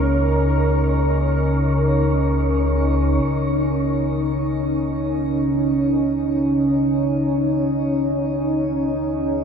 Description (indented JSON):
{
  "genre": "dark ambient drone",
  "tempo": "free time",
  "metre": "none",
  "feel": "none",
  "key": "unclear",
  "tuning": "A4 = 442 Hz",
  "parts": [
    { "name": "deep dark ambient pad", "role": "sustained chords", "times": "0.0-9.4 s", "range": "C#4 to A#4", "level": "-20 LUFS", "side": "right 1 dB", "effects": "chorus, built-in reverb, shimmer reverb" },
    { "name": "analog drone", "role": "drone", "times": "0.0-9.4 s", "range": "C#2 to C#3", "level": "-22 LUFS", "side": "left 1 dB", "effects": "chorus" },
    { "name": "wind-like tuned noise texture", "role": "texture", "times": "0.0-3.3 s", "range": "C#5", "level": "-31 LUFS", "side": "right 2 dB", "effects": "built-in reverb, shimmer reverb" }
  ],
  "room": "wet huge ambient reverb, RT60 8.0 s",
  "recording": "none",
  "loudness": "-18 LUFS",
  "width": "side -6 dB against mid",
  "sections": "0.0-3.2 A section; 3.2-9.4 B section",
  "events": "filter sweep on synth drone 3.2-9.4",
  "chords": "0.0 C#sus2"
}